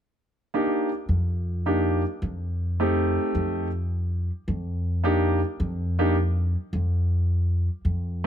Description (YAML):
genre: jazz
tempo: 107 BPM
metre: 4/4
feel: swing 69% on 8ths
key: unclear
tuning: A4 = 441 Hz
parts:
  - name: bright grand piano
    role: melody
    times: 0.5-8.3 s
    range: A3 to G4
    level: -24 LUFS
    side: right 1 dB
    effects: plate reverb
  - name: upright bass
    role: bass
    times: 1.1-8.3 s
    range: F2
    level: -24 LUFS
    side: equal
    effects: none
room: light reverb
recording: close, detailed microphones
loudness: -23 LUFS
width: side -9 dB against mid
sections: 0.5-8.3 A section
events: none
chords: 0.5 F13sus4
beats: | 0.53 1.10 1.66 2.22 | 2.78 3.35 3.91 4.47 | 5.04 5.60 6.16 6.73 | 7.29 7.85